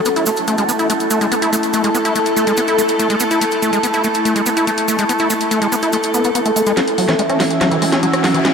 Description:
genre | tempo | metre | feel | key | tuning
psychedelic trance | 143 BPM | 4/4 | straight | unclear | A4 = 439 Hz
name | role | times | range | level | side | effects
evolving wavetable pad | sustained chords | 0.0-8.5 s | E3 to A4 | -19 LUFS | equal | phaser, built-in reverb
airy breathy pad | texture | 0.0-8.5 s | C#4 to A5 | -21 LUFS | left 1 dB | chorus
overdriven acid bass | riff | 0.1-8.5 s | E3 to E4 | -18 LUFS | equal | auto-pan, tape echo
drum and bass drum kit | drums | 0.1-8.5 s | hi-hat, rim click, snare drum | -22 LUFS | equal | none
cabasa | percussion | 0.1-6.7 s | none | -27 LUFS | right 1 dB | none
riser | sound effects | 7.9-8.5 s | none | -29 LUFS | left 3 dB | none
room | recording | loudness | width
wet huge ambient reverb, RT60 8.2 s | dreamy mix soaked in reverb | -14 LUFS | side -6 dB against mid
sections
0.0-6.8 A section; 6.8-8.5 B section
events
build-up 6.8-8.5; drum fill 6.8-8.5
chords
0.0 A5; 6.8 F#5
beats
| 0.06 0.48 0.90 1.32 | 1.74 2.16 2.58 3.00 | 3.41 3.83 4.25 4.67 | 5.09 5.51 5.93 6.35 | 6.77 7.19 7.61 8.03 | 8.45

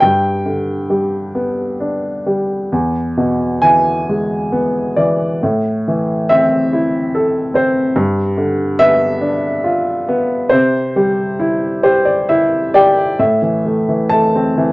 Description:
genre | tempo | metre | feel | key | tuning
classical, lyrical solo piano | 65-74 BPM | 3/4 | rubato | C major | A4 = 440 Hz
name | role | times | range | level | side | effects
warm upright piano | solo | 0.0-14.7 s | E2 to A5 | -13 LUFS | equal | none
room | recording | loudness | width
light reverb | nothing above 7.9 kHz | -13 LUFS | side -21 dB against mid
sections
0.0-13.2 A section; 13.2-14.7 B section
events
upright piano fill 11.4-13.2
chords
0.0 G; 2.7 E; 5.4 Am; 8.0 G7; 10.5 C; 13.2 Am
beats
| 0.02 0.90 1.80 | 2.71 3.62 4.52 | 5.42 6.30 7.14 | 7.96 8.80 9.65 | 10.51 11.39 12.28 | 13.20 14.12

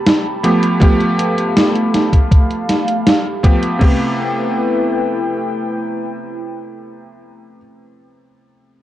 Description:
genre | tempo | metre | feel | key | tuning
vaporwave | 80 BPM | 4/4 | straight | A minor | A4 = 444 Hz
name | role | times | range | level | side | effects
bright electric grand piano | accompaniment | 0.0-8.8 s | C3 to G4 | -18 LUFS | right 1 dB | lush chorus, dub echo
warbly tape-like pad | sustained chords | 0.0-7.6 s | A3 to B5 | -21 LUFS | left 1 dB | chorus, built-in reverb, phaser
gated 80s digital drum machine | drums | 0.1-3.8 s | hi-hat, snare drum | -15 LUFS | equal | gated reverb, gated reverb snare
gated 80s digital drum machine | drums | 0.8-4.0 s | crash cymbal, kick drum | -12 LUFS | equal | none
room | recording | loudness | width
light reverb, digital ambience | echo-heavy mix, cassette tape | -13 LUFS | side -13 dB against mid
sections
0.0-3.8 A section; 3.8-6.8 B section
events
none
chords
0.4 G9; 3.8 Am9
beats
0.06 | 0.81 1.56 2.31 3.06 | 3.81 4.56 5.31 6.06

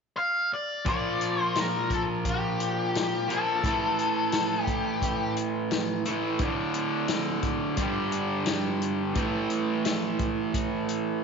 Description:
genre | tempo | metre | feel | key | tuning
blues rock power trio and southern rock | 87 BPM | 4/4 | straight | unclear | A4 = 440 Hz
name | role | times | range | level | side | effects
octave-fuzz lead guitar | melody | 0.2-5.3 s | G4 to F5 | -28 LUFS | left 2 dB | distortion
cranked stack guitar | riff | 0.9-11.2 s | D2 to Bb3 | -27 LUFS | right 2 dB | overdrive
vintage drum kit | drums | 0.9-11.1 s | hi-hat, kick drum, snare drum | -32 LUFS | left 2 dB | none
room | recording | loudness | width
moderate plate reverb, RT60 2.0 s, small room ambience | 1960s-style stereo, nothing above 7.5 kHz | -25 LUFS | side -5 dB against mid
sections
0.9-11.2 A section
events
none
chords
0.0 N.C.; 0.9 Bb; 3.6 A5; 6.4 D5; 7.8 G5; 9.2 A5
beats
0.17 | 0.86 1.56 2.25 2.94 | 3.64 4.33 5.02 5.71 | 6.41 7.10 7.79 8.48 | 9.17 9.86 10.55

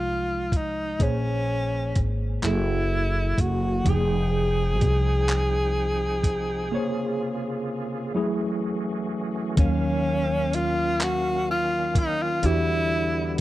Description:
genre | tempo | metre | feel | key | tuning
slow six-eight R&B | 42 BPM (dotted quarters) | 6/8 | straight | unclear | A4 = 439 Hz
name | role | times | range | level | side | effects
breathy tenor saxophone | melody | 0.0-13.4 s | Db4 to Ab4 | -27 LUFS | equal | none
tine electric piano | accompaniment | 0.0-13.4 s | Eb3 to G5 | -29 LUFS | right 1 dB | medium stereo tremolo
upright bass | bass | 0.0-13.3 s | F1 to E2 | -26 LUFS | equal | none
dusty soul sampler-style drum kit | drums | 0.5-13.4 s | handclaps, hi-hat, kick drum | -23 LUFS | equal | none
bright tonewheel organ | sustained chords | 3.9-13.4 s | C3 to G5 | -33 LUFS | equal | overdrive, chorus vibrato, fast rotary speaker
room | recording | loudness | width
little or no reverb | dry, close 1970s-style studio recording | -22 LUFS | side -15 dB against mid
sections
0.0-9.6 A section; 9.6-13.4 B section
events
break 6.7-9.6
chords
0.0 Fm9; 1.0 Bbm9; 2.4 Gbm9; 3.9 Fm9; 6.7 Bbm9; 8.1 Gbm9; 9.6 Ebm9; 12.4 Em9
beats
| 1.00 2.43 | 3.86 5.29 | 6.72 8.14 | 9.57 11.00 | 12.43

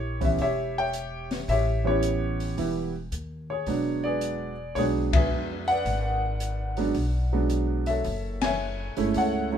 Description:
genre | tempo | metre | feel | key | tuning
jazz piano trio | 110 BPM | 4/4 | swing 68% on 8ths | E mixolydian | A4 = 442 Hz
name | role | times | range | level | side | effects
warm concert grand piano | melody | 0.0-9.6 s | E3 to G#5 | -26 LUFS | right 1 dB | none
upright bass | bass | 0.0-9.6 s | E1 to F2 | -30 LUFS | equal | none
open jazz drum kit | drums | 0.2-9.3 s | hi-hat, kick drum, ride cymbal, snare drum | -30 LUFS | left 2 dB | none
room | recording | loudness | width
light reverb | minimal, uncompressed stereo recording | -24 LUFS | side -9 dB against mid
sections
0.0-9.6 A section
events
band accent 5.0, 8.3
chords
0.0 A7; 3.7 E7; 8.0 F#m7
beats
0.39 0.94 | 1.48 2.03 2.58 3.12 | 3.67 4.22 4.76 5.31 | 5.86 6.40 6.95 7.50 | 8.05 8.60 9.14

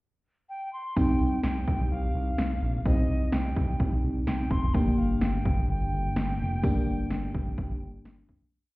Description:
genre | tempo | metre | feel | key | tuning
synth-pop | 127 BPM | 4/4 | straight | C minor | A4 = 440 Hz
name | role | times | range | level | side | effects
breathy bright alto ocarina | melody | 0.5-8.0 s | Eb5 to C6 | -37 LUFS | equal | tape echo
FM electric piano | accompaniment | 1.0-8.5 s | Bb3 to G4 | -31 LUFS | equal | chorus, phaser
smooth synth bass | bass | 1.0-8.5 s | F1 to C2 | -29 LUFS | equal | none
punchy analog drum machine | drums | 1.0-8.4 s | kick drum, snare drum | -28 LUFS | equal | none
room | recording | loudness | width
light reverb | heard muffled through a wall, stone room reverb, EQ | -25 LUFS | side -20 dB against mid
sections
0.0-1.0 pickup bar; 1.0-8.5 verse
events
fade-out 6.6-8.5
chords
0.0 N.C.; 1.0 Cm; 4.7 Gm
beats
0.02 0.49 | 0.97 1.44 1.91 2.38 | 2.85 3.33 3.80 4.27 | 4.75 5.22 5.69 6.16 | 6.63 7.11 7.58 8.05

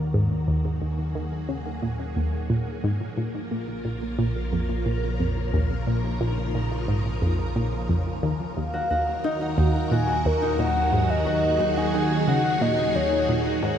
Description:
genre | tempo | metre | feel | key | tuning
ambient, sequencer-driven space music | 89 BPM | 4/4 | straight | Eb minor | A4 = 441 Hz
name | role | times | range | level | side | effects
phased string machine | sustained chords | 0.0-13.8 s | Db3 to Bb4 | -29 LUFS | right 1 dB | ensemble chorus, phaser
analog pluck | riff | 0.0-13.8 s | Eb2 to Eb3 | -26 LUFS | equal | chorus, phaser, analog delay
analog drone | bass | 0.0-13.8 s | Bb1 to Eb2 | -29 LUFS | equal | chorus, phaser
mellow horn-like synth lead | melody | 8.6-13.6 s | Bb4 to Ab5 | -25 LUFS | left 1 dB | chorus, analog delay
concert harp | arpeggios | 8.7-13.8 s | Eb4 to Gb4 | -32 LUFS | left 2 dB | auto-pan, analog delay
room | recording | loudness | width
moderate huge ambient reverb, RT60 8.5 s | none | -22 LUFS | side -9 dB against mid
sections
0.0-13.8 A section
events
fade-in on string machine 0.0-13.8; filter sweep on synth arpeggio sound 0.0-13.8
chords
0.0 Ebm; 3.2 Bbm; 8.6 Ebm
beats
| 0.48 1.15 1.83 2.50 | 3.17 3.85 4.52 5.20 | 5.87 6.55 7.22 7.89 | 8.57 9.24 9.92 10.59 | 11.27 11.94 12.61 13.29

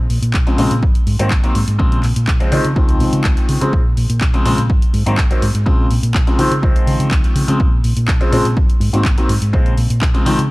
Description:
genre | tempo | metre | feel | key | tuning
filtered disco house | 124 BPM | 4/4 | straight | Bb minor | A4 = 440 Hz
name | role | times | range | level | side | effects
hollow-body short-scale fingered electric bass | bass | 0.0-10.5 s | Ab1 to Db3 | -18 LUFS | equal | sidechain pumping, low-pass filter
house drum kit | drums | 0.1-10.5 s | handclaps, hi-hat | -25 LUFS | equal | sidechain pumping on hats, studio reverb
electronic kick drum | drums | 0.3-10.1 s | none | -16 LUFS | equal | studio reverb
bright grand piano | accompaniment | 0.5-10.4 s | Db3 to C4 | -19 LUFS | left 1 dB | phaser, sidechain pumping, low-pass filter
room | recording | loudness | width
little or no reverb | dry, gritty hardware recording, cassette tape | -12 LUFS | side -21 dB against mid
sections
0.0-10.5 A section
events
none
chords
0.0 Bbm7; 0.8 Ab7; 1.8 Bbm7; 2.5 Dbmaj7; 3.7 Bbm7; 4.7 Ab7; 5.7 Bbm7; 6.4 Dbmaj7; 7.6 Bbm7; 8.6 Ab7; 9.5 Bbm7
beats
0.34 0.83 1.31 | 1.79 2.28 2.76 3.25 | 3.73 4.21 4.70 5.18 | 5.67 6.15 6.63 7.12 | 7.60 8.08 8.57 9.05 | 9.54 10.02

